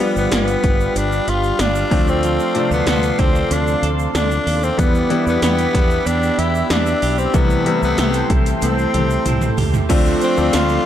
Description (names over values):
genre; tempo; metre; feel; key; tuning
1980s-style pop; 94 BPM; 4/4; straight; D dorian; A4 = 441 Hz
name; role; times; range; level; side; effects
growling tenor saxophone; melody; 0.0-10.9 s; B3 to F4; -21 LUFS; left 2 dB; shimmer reverb
clear concert grand piano; accompaniment; 0.0-10.9 s; C3 to D4; -22 LUFS; left 4 dB; shimmer reverb
lush unison pad; sustained chords; 0.0-10.9 s; G4 to C6; -25 LUFS; equal; chorus, shimmer reverb
twelve-string electric guitar; riff; 0.0-10.9 s; E3 to B4; -25 LUFS; right 8 dB; wide subtle chorus, digital delay, shimmer reverb
80s electronic pad drums; drums; 0.0-10.7 s; crash cymbal, hi-hat, kick drum, snare drum, tambourine, toms; -20 LUFS; equal; gated reverb on snare and toms
mellow fretless electric bass; bass; 0.2-10.8 s; G1 to E2; -21 LUFS; equal; none
egg shaker; percussion; 0.2-10.8 s; none; -38 LUFS; right 10 dB; none
biting overdriven guitar; accompaniment; 9.9-10.9 s; D3 to D4; -29 LUFS; right 5 dB; lush chorus, shimmer reverb
room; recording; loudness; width
light reverb, digital ambience; dark, warm production; -14 LUFS; side -10 dB against mid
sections
0.0-9.9 A section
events
drum fill 8.6-9.9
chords
0.0 G7; 1.9 Dm7; 4.8 Em7; 7.3 C6; 9.9 Dm7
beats
0.32 0.96 1.60 | 2.23 2.87 3.51 4.15 | 4.79 5.43 6.07 6.70 | 7.34 7.98 8.62 9.26 | 9.89 10.53